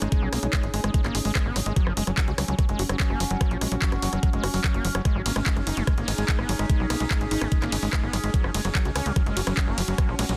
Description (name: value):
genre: psychedelic trance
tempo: 146 BPM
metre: 4/4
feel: straight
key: unclear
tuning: A4 = 443 Hz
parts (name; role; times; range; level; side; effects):
- overtone-sweeping drone; sustained chords; 0.0-10.4 s; C#4; -38 LUFS; equal; chorus, built-in reverb, phaser, sidechain pumping
- screaming distorted acid line; riff; 0.0-10.3 s; E#3 to F#4; -33 LUFS; equal; distortion, chorus, sidechain pumping, digital delay
- tight sequencer bass; bass; 0.0-10.4 s; F#1 to C#2; -30 LUFS; equal; none
- drum and bass drum kit; drums; 0.0-10.4 s; handclaps, hi-hat, ride cymbal, rim click; -33 LUFS; equal; small room ambience, soft clipping on snare
- warbly tape-like pad; texture; 0.0-10.4 s; C#4 to D#6; -38 LUFS; equal; chorus, built-in reverb, sidechain pumping
- electronic kick drum; drums; 0.1-10.1 s; none; -26 LUFS; equal; small room ambience
room: light reverb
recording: dense, heavily limited modern master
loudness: -25 LUFS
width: mono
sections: 0.0-10.4 A section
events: none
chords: 0.0 G#5; 1.8 F#5; 5.1 G#5; 8.3 F#5